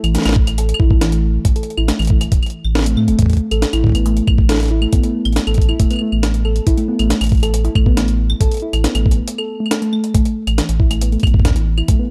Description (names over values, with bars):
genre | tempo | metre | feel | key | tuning
IDM | 138 BPM | 4/4 | straight | unclear | A4 = 438 Hz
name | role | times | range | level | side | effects
harp-like synth pluck | arpeggios | 0.0-12.1 s | E3 to A4 | -22 LUFS | equal | chorus, tape echo
warm sub bass | bass | 0.0-12.0 s | E1 to A2 | -19 LUFS | equal | tube saturation
jungle sampler-style drum kit | drums | 0.0-12.0 s | claves, hi-hat, snare drum | -24 LUFS | equal | none
electronic kick drum | drums | 0.4-12.0 s | none | -17 LUFS | equal | none
room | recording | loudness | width
little or no reverb | dry, gritty hardware recording | -16 LUFS | mono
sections
0.0-12.1 A section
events
break 9.3-10.1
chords
0.0 A5; 3.2 N.C.